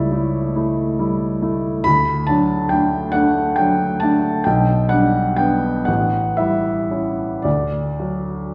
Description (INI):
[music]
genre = classical, romantic nocturne for solo piano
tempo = 36-48 BPM (dotted quarters)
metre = 12/8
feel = rubato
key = D major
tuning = A4 = 440 Hz
[part]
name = bright grand piano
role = solo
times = 0.0-8.5 s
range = A1 to B5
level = -19 LUFS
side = equal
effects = none
[sound]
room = wet recital hall reverb, RT60 1.6 s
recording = heard from further back in the room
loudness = -19 LUFS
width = mono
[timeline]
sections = 0.0-8.5 A section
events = none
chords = 0.0 A7/C#; 1.9 D; 4.5 G/B; 5.9 A7; 7.5 D